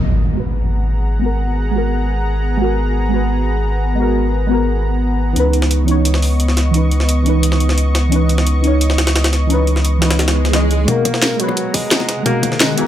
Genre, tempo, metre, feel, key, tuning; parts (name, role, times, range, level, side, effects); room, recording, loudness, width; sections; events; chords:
liquid drum and bass; 174 BPM; 4/4; straight; G# minor; A4 = 441 Hz
deep mellow chord stab; accompaniment; 0.0-12.9 s; B2 to D#5; -19 LUFS; right 1 dB; chorus, dub echo
lush unison pad; sustained chords; 0.5-12.9 s; B3 to C#6; -24 LUFS; equal; chorus, vintage 12-bit sampler grit, sidechain pumping
warm sub bass; bass; 0.0-12.9 s; G#1 to D#2; -16 LUFS; equal; high-pass filter
impact, swell and riser; sound effects; 0.0-1.2, 10.3-12.9 s; -23 LUFS; equal
jungle sampler-style drum kit; drums; 5.4-12.9 s; hi-hat, snare drum; -20 LUFS; equal; high-pass filter on snare, small room ambience, high-pass filter on hats
breathy tenor saxophone; melody; 10.5-12.9 s; E3 to A#3; -21 LUFS; equal; low-pass filter, ping-pong delay
electronic kick drum; drums; 10.9-12.5 s; -22 LUFS; equal; overdrive, high-pass filter on kick, small room ambience
garage drum kit; drums; 10.9-12.8 s; hi-hat, rim click, snare drum; -17 LUFS; equal; overdrive, small room ambience
bongos; percussion; 11.5-12.5 s; -26 LUFS; left 7 dB
light reverb; -13 LUFS; side -11 dB against mid
0.0-10.9 A section; 10.9-12.9 B section
impact 0.0-1.2; swell 10.3-10.9; build-up 10.9-12.9; riser 10.9-12.9; filter sweep on tenor saxophone 10.9-12.9
0.0 G#m9; 5.4 C#m9; 10.9 G#m9